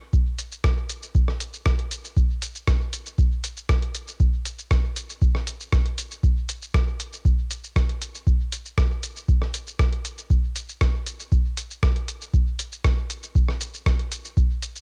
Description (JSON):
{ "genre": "techno", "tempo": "118 BPM", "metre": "4/4", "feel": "straight", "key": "none", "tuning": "none", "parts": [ { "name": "electronic kick drum", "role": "drums", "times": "0.1-14.5 s", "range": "none", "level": "-23 LUFS", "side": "equal", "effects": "none" }, { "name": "lo-fi sampler-style drum kit", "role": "drums", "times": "0.1-14.8 s", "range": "hi-hat, rim click, shaker", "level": "-34 LUFS", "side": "equal", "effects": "none" } ], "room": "little or no reverb", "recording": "none", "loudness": "-25 LUFS", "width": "mono", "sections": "0.1-14.8 A section", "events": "none", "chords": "none", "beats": "| 0.13 0.64 1.15 1.66 | 2.17 2.67 3.18 3.69 | 4.20 4.71 5.22 5.73 | 6.24 6.74 7.25 7.76 | 8.27 8.78 9.29 9.79 | 10.30 10.81 11.32 11.83 | 12.34 12.85 13.35 13.86 | 14.37" }